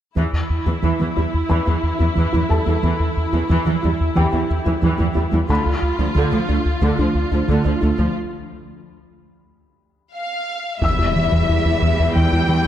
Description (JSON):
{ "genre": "cinematic", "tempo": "90 BPM", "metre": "4/4", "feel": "straight", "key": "E phrygian", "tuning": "A4 = 440 Hz", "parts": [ { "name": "rich studio viola section", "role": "accompaniment", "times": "0.2-12.7 s", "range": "D3 to F4", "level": "-23 LUFS", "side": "right 1 dB", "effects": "none" }, { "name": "glassy wavetable pluck", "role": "arpeggios", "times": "0.2-12.6 s", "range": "D3 to E4", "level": "-25 LUFS", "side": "right 2 dB", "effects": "chorus, digital delay" }, { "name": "rubbery square bass", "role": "riff", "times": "0.2-12.6 s", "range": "D2 to E3", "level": "-20 LUFS", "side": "equal", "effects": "none" }, { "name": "rich symphonic cello section", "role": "bass", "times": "0.2-12.7 s", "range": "D2 to E2", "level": "-24 LUFS", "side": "right 1 dB", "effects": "none" }, { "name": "felt-muted upright piano", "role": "texture", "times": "1.5-12.7 s", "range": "G4 to E6", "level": "-28 LUFS", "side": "left 3 dB", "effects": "digital delay" }, { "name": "warm symphonic violin section", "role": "melody", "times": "10.2-12.7 s", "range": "E5 to G5", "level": "-22 LUFS", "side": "left 3 dB", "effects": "none" }, { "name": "impact", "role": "sound effects", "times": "10.8-12.7 s", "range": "none", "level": "-27 LUFS", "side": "left 1 dB", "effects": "none" } ], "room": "moderate scoring stage reverb, RT60 2.1 s", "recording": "none", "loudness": "-16 LUFS", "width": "side -11 dB against mid", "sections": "0.2-10.8 A section; 10.8-12.7 B section", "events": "break 8.2-10.8; impact 10.8-12.7", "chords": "0.2 Em; 5.5 Dm; 10.8 Em" }